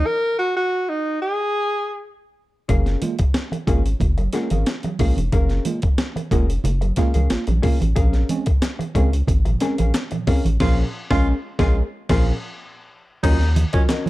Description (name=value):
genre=funk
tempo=91 BPM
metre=4/4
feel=straight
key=unclear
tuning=A4 = 438 Hz
part: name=breathy tenor saxophone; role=melody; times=0.0-2.2 s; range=Eb4 to Bb4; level=-20 LUFS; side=equal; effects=none
part: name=rubbery square bass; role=bass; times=0.0-13.7 s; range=F1 to Eb2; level=-20 LUFS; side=equal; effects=none
part: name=vintage hollow-body jazz guitar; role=accompaniment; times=2.7-14.1 s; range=Db4 to Ab5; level=-27 LUFS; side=left 3 dB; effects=none
part: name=mellow tine electric piano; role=stabs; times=2.7-14.1 s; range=Bb2 to F4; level=-27 LUFS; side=right 3 dB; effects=medium stereo tremolo
part: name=breakbeat sampler-style drum kit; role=drums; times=2.7-14.1 s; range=crash cymbal, hi-hat, kick drum, snare drum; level=-21 LUFS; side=equal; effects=none
part: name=congas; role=percussion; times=3.0-14.1 s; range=none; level=-28 LUFS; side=right 4 dB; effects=none
part: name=group handclap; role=percussion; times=8.6-14.1 s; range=none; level=-36 LUFS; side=left 4 dB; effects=none
part: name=clear baritone saxophone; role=second line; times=10.6-13.8 s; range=Db4 to F4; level=-30 LUFS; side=right 1 dB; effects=none
room=little or no reverb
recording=dark, warm production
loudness=-18 LUFS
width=side -17 dB against mid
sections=0.0-2.7 A section; 2.7-13.2 B section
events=tenor saxophone solo 0.0-2.7; break 0.1-2.7; band accent 10.6-13.2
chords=0.0 N.C.; 2.7 Gbmaj9; 8.0 Bbm7; 13.2 Ebm7